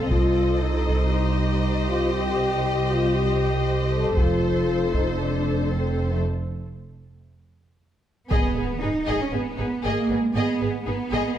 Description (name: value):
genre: cinematic, epic orchestral film score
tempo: 117 BPM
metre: 4/4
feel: straight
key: C dorian, G# minor from 8.3 s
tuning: A4 = 438 Hz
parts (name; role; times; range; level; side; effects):
- rich studio violin section; melody; 0.0-11.4 s; G#4 to Eb5; -32 LUFS; left 3 dB; none
- clear symphonic violin section; second line; 0.0-11.4 s; B3 to C5; -33 LUFS; left 2 dB; none
- rich symphonic viola section; accompaniment; 0.0-11.4 s; G4 to A4; -30 LUFS; right 1 dB; none
- warm French horn section; sustained chords; 0.0-6.2 s; A3 to A4; -26 LUFS; left 4 dB; none
- rich symphonic cello section; bass; 0.0-11.4 s; C2 to D#4; -28 LUFS; right 2 dB; none
- rich symphonic double bass section; bass; 0.0-11.2 s; F1 to C2; -26 LUFS; right 2 dB; none
- taiko ensemble; drums; 0.1-1.1, 4.2-5.2, 8.3-9.3 s; none; -25 LUFS; equal; none
- impact; sound effects; 8.3-10.4 s; none; -33 LUFS; equal; none
room: moderate recital hall reverb, RT60 1.7 s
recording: none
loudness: -21 LUFS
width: side -10 dB against mid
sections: 0.0-8.3 A section; 8.3-11.4 B section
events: break 6.2-8.3; impact 8.3-10.4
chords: 0.1 Cm; 4.2 F; 6.2 N.C.; 8.3 G#m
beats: | 0.11 0.62 1.13 1.64 | 2.14 2.65 3.16 3.66 | 4.17 4.68 5.19 5.71 | 6.23 6.75 7.27 7.79 | 8.31 8.82 9.33 9.84 | 10.36 10.87 11.38